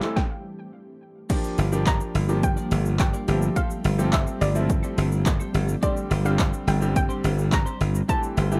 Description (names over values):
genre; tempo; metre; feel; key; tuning
dance-pop; 106 BPM; 4/4; straight; G dorian; A4 = 440 Hz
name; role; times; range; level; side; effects
hollow square pluck; melody; 0.0-8.6 s; D5 to Bb5; -33 LUFS; equal; chorus, tape echo, plate reverb
bright concert grand piano; accompaniment; 0.0-8.6 s; D3 to A4; -32 LUFS; equal; sidechain pumping
ethereal airy pad; sustained chords; 0.0-8.6 s; E3 to G4; -35 LUFS; equal; ensemble chorus, built-in reverb, tremolo, sidechain pumping
punchy analog drum machine; drums; 0.0-8.6 s; crash cymbal, handclaps, hi-hat, kick drum, shaker, snare drum; -28 LUFS; equal; none
twelve-string electric guitar; riff; 1.3-8.6 s; C4 to D5; -42 LUFS; equal; none
glassy slap bass; bass; 1.6-8.6 s; G1; -25 LUFS; equal; sidechain pumping
room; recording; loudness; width
light reverb; rough home demo mix; -23 LUFS; mono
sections
0.0-1.3 A section; 1.3-8.6 B section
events
stop 0.2-1.3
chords
0.2 N.C.; 1.3 Gm7; 3.3 Fadd9/G; 5.8 Csus2/G; 8.1 Am7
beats
0.17 0.73 | 1.30 1.86 2.43 3.00 | 3.56 4.13 4.69 5.26 | 5.83 6.39 6.96 7.53 | 8.09